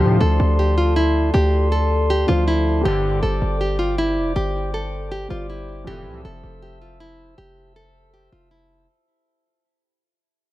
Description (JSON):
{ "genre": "hip hop", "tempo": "159 BPM", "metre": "4/4", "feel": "half-time", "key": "unclear", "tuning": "A4 = 440 Hz", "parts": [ { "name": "nylon-string guitar", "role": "melody", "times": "0.0-8.9 s", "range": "E4 to A4", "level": "-22 LUFS", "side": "equal", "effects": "none" }, { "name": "dark grand piano", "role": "accompaniment", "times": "0.0-8.9 s", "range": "D3 to D5", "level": "-30 LUFS", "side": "left 1 dB", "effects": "none" }, { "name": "glass harmonica", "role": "sustained chords", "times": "0.0-8.9 s", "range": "A4 to E6", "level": "-28 LUFS", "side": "left 2 dB", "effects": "none" }, { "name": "chorused polysynth", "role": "stabs", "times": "0.0-0.2, 2.9-3.2, 5.9-6.2 s", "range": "C2 to F3", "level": "-25 LUFS", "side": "left 2 dB", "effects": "none" }, { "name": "hard-hitting 808-style bass", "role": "bass", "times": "0.0-8.9 s", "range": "F1 to A2", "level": "-20 LUFS", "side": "equal", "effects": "none" } ], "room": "light reverb", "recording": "none", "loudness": "-17 LUFS", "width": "side -16 dB against mid", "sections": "0.0-8.9 A section", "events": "fade-out 0.0-8.9", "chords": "0.0 Dm7; 2.9 Gsus4; 5.9 Fmaj7" }